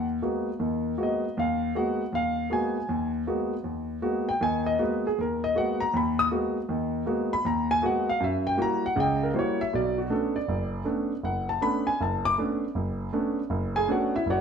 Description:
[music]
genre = jazz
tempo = 158 BPM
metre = 4/4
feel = swing 64% on 8ths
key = G# minor, B dorian from 9.7 s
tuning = A4 = 443 Hz
[part]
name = warm concert grand piano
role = solo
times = 0.0-14.4 s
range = F#1 to D#6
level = -25 LUFS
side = equal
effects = none
[sound]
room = wet studio reverb, RT60 0.9 s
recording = band playing live in one room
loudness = -25 LUFS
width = side -6 dB against mid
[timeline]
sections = 0.0-9.7 A section; 9.7-14.4 A section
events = none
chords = 0.0 G#m9; 8.2 F#7b9; 9.7 Bm9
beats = 0.23 | 0.60 0.99 1.37 1.75 | 2.13 2.51 2.89 3.27 | 3.65 4.03 4.41 4.79 | 5.17 5.55 5.93 6.31 | 6.69 7.07 7.45 7.83 | 8.21 8.59 8.97 9.35 | 9.72 10.11 10.48 10.86 | 11.24 11.62 12.00 12.38 | 12.75 13.13 13.51 13.88 | 14.26

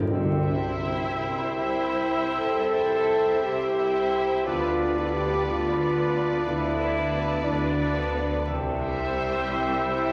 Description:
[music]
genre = classical, slow romantic movement for symphony orchestra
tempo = 49-62 BPM (dotted quarters)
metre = 12/8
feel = rubato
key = C major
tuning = A4 = 440 Hz
[part]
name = concert harp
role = arpeggios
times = 0.0-10.1 s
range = C3 to D6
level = -42 LUFS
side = equal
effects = none
[part]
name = bright clarinet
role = second line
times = 0.1-10.1 s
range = B4 to C5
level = -42 LUFS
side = equal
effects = none
[part]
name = mellow concert flute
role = second line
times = 0.1-10.1 s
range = F5 to G5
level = -38 LUFS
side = equal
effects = none
[part]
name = warm cor anglais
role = second line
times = 0.1-10.1 s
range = D5 to E5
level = -36 LUFS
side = equal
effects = none
[part]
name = warm bassoon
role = accompaniment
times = 0.1-10.1 s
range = C4 to D4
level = -37 LUFS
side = equal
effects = none
[part]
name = rich studio double bass section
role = bass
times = 0.1-10.1 s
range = C2 to D2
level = -37 LUFS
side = equal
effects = none
[part]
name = rich symphonic cello section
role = bass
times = 0.1-10.1 s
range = C3 to D3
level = -39 LUFS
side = equal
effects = none
[part]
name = warm tuba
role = bass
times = 0.1-10.1 s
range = C2 to D2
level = -38 LUFS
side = equal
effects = none
[part]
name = clear studio violin section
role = melody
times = 0.5-10.1 s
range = D5 to E5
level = -40 LUFS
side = equal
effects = none
[part]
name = rich studio violin section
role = second line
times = 0.5-10.1 s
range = B4 to C5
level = -37 LUFS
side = equal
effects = none
[part]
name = clear studio viola section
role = accompaniment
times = 0.5-10.1 s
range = G3 to E4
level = -40 LUFS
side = equal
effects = none
[part]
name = warm French horn section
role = sustained chords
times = 1.2-10.1 s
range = D4 to A4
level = -28 LUFS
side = equal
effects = none
[sound]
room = wet concert hall reverb, RT60 1.8 s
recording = vinyl crackle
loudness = -25 LUFS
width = mono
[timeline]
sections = 0.1-10.1 A section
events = none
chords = 0.1 C; 4.5 Bdim/D; 8.5 C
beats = | 0.11 1.21 2.38 3.43 | 4.46 5.47 6.46 7.45 | 8.48 9.52

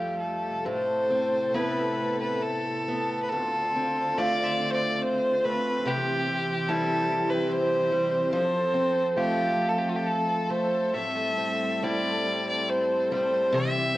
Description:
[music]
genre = celtic folk, Celtic slow air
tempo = 64-74 BPM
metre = 3/4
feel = rubato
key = unclear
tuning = A4 = 441 Hz
[part]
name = rich fiddle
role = melody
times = 0.0-14.0 s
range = F4 to E5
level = -26 LUFS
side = equal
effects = none
[part]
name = picked steel-string acoustic guitar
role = accompaniment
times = 0.0-14.0 s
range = D2 to F4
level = -30 LUFS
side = equal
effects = none
[part]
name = warm studio string section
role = sustained chords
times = 0.0-14.0 s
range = C3 to A4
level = -33 LUFS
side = equal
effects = none
[sound]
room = moderate recital hall reverb, RT60 1.7 s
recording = worn, warbling old tape, cassette tape, warbly pitch drift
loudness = -24 LUFS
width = side -16 dB against mid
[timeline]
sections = 0.7-14.0 A section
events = none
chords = 0.0 Fadd9; 0.7 Amadd9; 3.3 Dm7; 5.9 C; 8.3 F; 10.9 Am7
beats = | 0.66 1.55 2.44 | 3.32 4.19 5.03 | 5.87 6.69 7.51 | 8.33 9.17 10.05 | 10.95 11.83 12.70 | 13.54

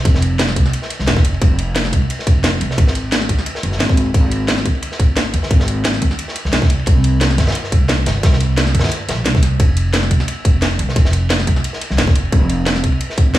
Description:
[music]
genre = liquid drum and bass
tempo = 176 BPM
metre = 4/4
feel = swing 54% on 16ths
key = unclear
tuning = A4 = 441 Hz
[part]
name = upright bass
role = bass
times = 0.1-13.4 s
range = F1 to Eb2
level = -17 LUFS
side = equal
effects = none
[part]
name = crunchy breakbeat drum kit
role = drums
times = 0.1-13.4 s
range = ride cymbal, snare drum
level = -24 LUFS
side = equal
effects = high-pass filter on cymbals, high-pass filter on snare, high-pass filter on room
[part]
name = electronic kick drum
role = drums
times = 0.1-13.2 s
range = none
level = -14 LUFS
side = equal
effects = none
[part]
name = garage drum kit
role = drums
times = 0.1-13.4 s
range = hi-hat, snare drum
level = -21 LUFS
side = equal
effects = none
[sound]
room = little or no reverb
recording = small room ambience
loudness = -13 LUFS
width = side -14 dB against mid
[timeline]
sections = 0.0-13.4 A section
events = none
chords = none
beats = | 0.05 0.39 0.73 1.07 | 1.42 1.76 2.10 2.44 | 2.78 3.12 3.46 3.80 | 4.14 4.48 4.83 5.17 | 5.51 5.85 6.19 6.53 | 6.87 7.21 7.55 7.89 | 8.23 8.57 8.92 9.26 | 9.60 9.94 10.28 10.62 | 10.96 11.30 11.64 11.98 | 12.32 12.67 13.01 13.35

